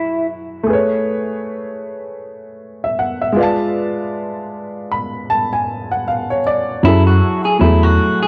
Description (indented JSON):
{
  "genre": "lo-fi hip hop",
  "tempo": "78 BPM",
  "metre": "4/4",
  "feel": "swing 58% on 16ths",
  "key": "F# minor",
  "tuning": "A4 = 440 Hz",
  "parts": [
    { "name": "electric guitar through a small old amp", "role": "melody", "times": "0.0-0.3, 6.8-8.3 s", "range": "E4 to G#4", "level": "-21 LUFS", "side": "equal", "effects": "spring reverb, low-pass filter" },
    { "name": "warm upright piano", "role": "accompaniment", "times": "0.0-8.3 s", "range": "F#3 to B5", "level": "-20 LUFS", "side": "equal", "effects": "low-pass filter" },
    { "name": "mellow tine electric piano", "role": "bass", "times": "6.8-8.0 s", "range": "E2 to F#2", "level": "-15 LUFS", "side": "equal", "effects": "none" }
  ],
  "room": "moderate small room reverb, RT60 0.5 s",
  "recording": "none",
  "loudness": "-17 LUFS",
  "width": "mono",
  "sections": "0.0-6.8 A section; 6.8-8.3 B section",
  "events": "upright piano fill 4.5-6.8",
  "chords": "0.0 F#7sus2; 0.7 Amaj9; 3.4 C#7b9b13/G#; 6.8 F#m9"
}